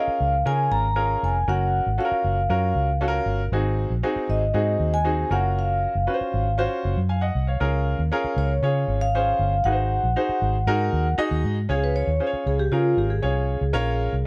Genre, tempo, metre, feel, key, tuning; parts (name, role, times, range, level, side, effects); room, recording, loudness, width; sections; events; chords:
uptempo 1960s-style soul; 118 BPM; 4/4; straight; Db major; A4 = 440 Hz
vibraphone with soft mallets; melody; 0.0-14.3 s; F4 to Bb5; -27 LUFS; equal
bright upright piano; accompaniment; 0.0-14.1 s; C4 to Ab5; -29 LUFS; equal; plate reverb
vintage muted fingered electric bass; bass; 0.1-14.2 s; F1 to Db3; -26 LUFS; equal
moderate small room reverb, RT60 0.5 s; -23 LUFS; mono
0.0-11.7 A section; 11.7-14.3 B section
vibraphone solo 11.7-14.3
0.0 Db6; 1.5 Gbmaj7; 3.5 Ab7; 5.3 Gbmaj7; 7.6 Db6; 9.7 Ab7; 11.7 Db; 13.7 Bbm